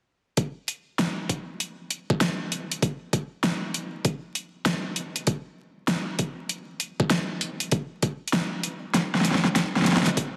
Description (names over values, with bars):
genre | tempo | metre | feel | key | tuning
glitch hop | 98 BPM | 4/4 | swing 64% on 16ths | none | none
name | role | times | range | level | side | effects
electronic kick drum | drums | 0.4-10.3 s | none | -27 LUFS | equal | overdrive, high-pass filter on kick, high-pass filter on room
pop drum kit | drums | 0.4-10.3 s | hi-hat, snare drum | -27 LUFS | equal | overdrive, high-pass filter on hats, high-pass filter on snare, high-pass filter on room
room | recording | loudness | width
moderate lush hall reverb, RT60 1.9 s | dense, heavily limited modern master, vinyl crackle | -27 LUFS | mono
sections
0.4-10.2 A section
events
kick drops out 8.9-10.2; drum fill 8.9-10.2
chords
none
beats
| 0.38 0.99 1.60 2.21 | 2.82 3.44 4.05 4.66 | 5.27 5.88 6.50 7.11 | 7.72 8.33 8.95 9.56 | 10.17